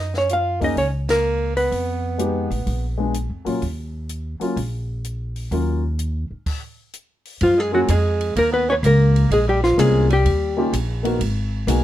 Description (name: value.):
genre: jazz, small-group swing and bop.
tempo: 126 BPM.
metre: 4/4.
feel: swing 67% on 8ths.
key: Eb minor, F# major from 7.4 s.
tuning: A4 = 440 Hz.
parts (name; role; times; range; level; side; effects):
hollow-body jazz guitar; melody; 0.0-3.0, 7.4-10.7 s; E#4 to F5; -20 LUFS; left 1 dB; none.
breathy alto saxophone; second line; 0.0-2.9, 7.4-10.7 s; E#3 to F4; -26 LUFS; right 6 dB; none.
upright bass; bass; 0.0-11.8 s; G#1 to Bb2; -21 LUFS; equal; none.
compact cocktail drum kit; drums; 0.1-11.8 s; crash cymbal, hi-hat, kick drum, ride cymbal, snare drum; -33 LUFS; equal; none.
warm baby grand piano; accompaniment; 0.6-11.8 s; Gb3 to A#4; -23 LUFS; left 2 dB; none.
room: little or no reverb.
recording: dark, warm production.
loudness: -18 LUFS.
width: side -13 dB against mid.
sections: 0.0-7.4 A section; 7.4-11.8 B section.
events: band accent 1.0; stop 6.5-7.4.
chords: 0.0 Gb6; 1.7 Fm7b5; 2.7 Bb7b9; 3.6 Ebm9; 6.5 N.C.; 7.4 F#maj9; 9.3 A#m9; 10.3 D#7; 11.2 G#m9.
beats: 0.29 0.77 1.25 | 1.72 2.19 2.67 3.14 | 3.62 4.09 4.57 5.04 | 5.52 5.99 6.47 6.94 | 7.42 7.89 8.36 8.84 | 9.31 9.79 10.26 10.73 | 11.21 11.68.